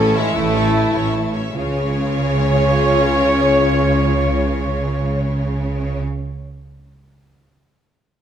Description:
cinematic, heroic adventure film score; 96 BPM (dotted quarters); 12/8; straight; Db major; A4 = 440 Hz
warm symphonic violin section; melody; 0.0-6.0 s; E4 to Db5; -30 LUFS; left 2 dB
mellow hollow flute section; second line; 0.0-6.0 s; Db5 to A5; -30 LUFS; right 2 dB
warm symphonic violin section; second line; 0.0-6.0 s; C#5 to C#6; -30 LUFS; left 1 dB
warm symphonic viola section; accompaniment; 0.0-6.0 s; C#4 to C#5; -26 LUFS; right 1 dB
dark French horn section; sustained chords; 0.0-6.0 s; Db4 to A4; -22 LUFS; left 5 dB
warm trumpet section; stabs; 0.0-6.0 s; Ab3 to Db5; -22 LUFS; right 2 dB
mellow tuba; bass; 0.0-6.0 s; A1 to Db2; -25 LUFS; right 3 dB
warm studio cello section; bass; 0.0-6.0 s; A2 to Db3; -24 LUFS; right 2 dB
warm symphonic double bass section; bass; 0.0-6.0 s; A1 to Db2; -23 LUFS; right 3 dB
wet recital hall reverb, RT60 1.6 s; -15 LUFS; side -9 dB against mid
0.0-1.6 A section; 1.6-6.6 B section
slowing down 0.0-1.6
0.0 A; 1.6 Db

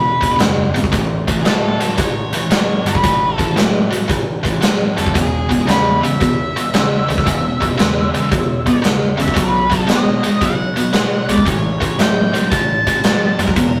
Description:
blues rock power trio and southern rock; 114 BPM; 4/4; swing 67% on 8ths; E major; A4 = 437 Hz
octave-fuzz lead guitar; melody; 0.0-13.8 s; G#4 to A5; -23 LUFS; equal; distortion
tight distorted guitar; riff; 0.0-13.8 s; E2 to G#3; -21 LUFS; equal; distortion
overdriven picked electric bass; bass; 0.2-13.8 s; E1 to B2; -25 LUFS; equal
big rock drum kit; drums; 0.2-13.7 s; hi-hat, kick drum, snare drum; -19 LUFS; equal
moderate stone room reverb, RT60 1.2 s; rough rehearsal-room recording, tube saturation; -16 LUFS; mono
0.0-13.8 A section
0.0 E; 0.9 A; 5.2 E5; 9.4 B; 11.5 A7

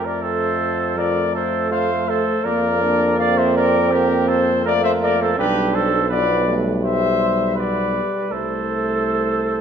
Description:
classical, brass quintet; 81 BPM; 4/4; rubato; A4 = 440 Hz
dark cornet; melody; 0.0-9.6 s; Bb4 to F5; -22 LUFS; left 7 dB
clear flugelhorn; second line; 0.0-9.6 s; G4 to D5; -22 LUFS; right 7 dB
mellow French horn; accompaniment; 0.0-9.6 s; F3 to Bb3; -26 LUFS; left 2 dB
mellow bass trombone; bass; 0.0-9.6 s; B1 to F2; -24 LUFS; right 1 dB
mellow trombone; accompaniment; 1.0-9.6 s; G3 to D4; -24 LUFS; right 4 dB
wet recital hall reverb, RT60 1.7 s; -16 LUFS; side -8 dB against mid
0.0-9.6 A section
0.0 F; 2.5 Bbmaj9/F; 5.4 G7/B; 8.3 Am/C

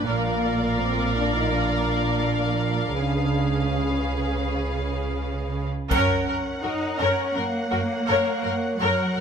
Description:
cinematic, epic orchestral film score; 83 BPM; 4/4; straight; F# major from 5.9 s; A4 = 440 Hz
dark symphonic violin section; melody; 0.0-9.2 s; F5 to F#5; -33 LUFS; left 4 dB
warm symphonic violin section; second line; 0.0-9.2 s; F#4 to D5; -30 LUFS; left 3 dB
bright studio viola section; accompaniment; 0.0-9.2 s; Ab4 to Bb4; -28 LUFS; right 1 dB
warm French horn section; sustained chords; 0.0-9.2 s; Bb3 to C#5; -30 LUFS; left 3 dB
dark symphonic cello section; bass; 0.0-9.2 s; Bb2 to D#4; -28 LUFS; right 3 dB
rich studio double bass section; bass; 0.0-9.2 s; Bb1 to F#2; -28 LUFS; right 3 dB
taiko ensemble; drums; 5.9-7.3 s; -30 LUFS; left 1 dB
triangle; percussion; 5.9-7.3 s; -44 LUFS; left 4 dB
light reverb; close, detailed microphones; -22 LUFS; side -7 dB against mid
0.0-5.9 A section; 5.9-9.2 B section
band accent 5.9-6.6
0.1 Bb; 3.0 Db7; 5.9 F#

